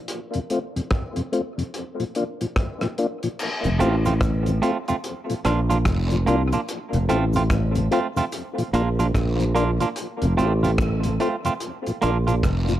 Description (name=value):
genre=dub reggae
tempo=73 BPM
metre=4/4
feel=swing 62% on 16ths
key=F major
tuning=A4 = 439 Hz
part: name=cloth-damped thuddy drum kit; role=drums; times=0.1-12.8 s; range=crash cymbal, hi-hat, kick drum, rim click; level=-27 LUFS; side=equal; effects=none
part: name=mellow tonewheel organ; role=accompaniment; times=0.3-12.7 s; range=F2 to F4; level=-26 LUFS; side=left 3 dB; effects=overdrive, chorus vibrato, slow rotary speaker, dub echo
part: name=cabasa and guiro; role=percussion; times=3.4-12.8 s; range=none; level=-42 LUFS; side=right 3 dB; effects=dub echo
part: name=sustaining fretless electric bass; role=bass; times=3.6-12.8 s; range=F1 to C2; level=-21 LUFS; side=equal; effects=lush chorus
part: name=clean electric guitar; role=accompaniment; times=3.8-12.3 s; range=A3 to F4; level=-26 LUFS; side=right 4 dB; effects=dub echo
room=light reverb, studio ambience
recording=none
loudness=-20 LUFS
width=side -12 dB against mid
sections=0.0-3.4 A section; 3.4-12.8 B section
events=break 0.0-3.4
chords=0.1 F; 1.7 Bb; 3.4 F; 5.0 Bb; 6.7 F; 8.3 Bb; 10.0 F; 11.6 Bb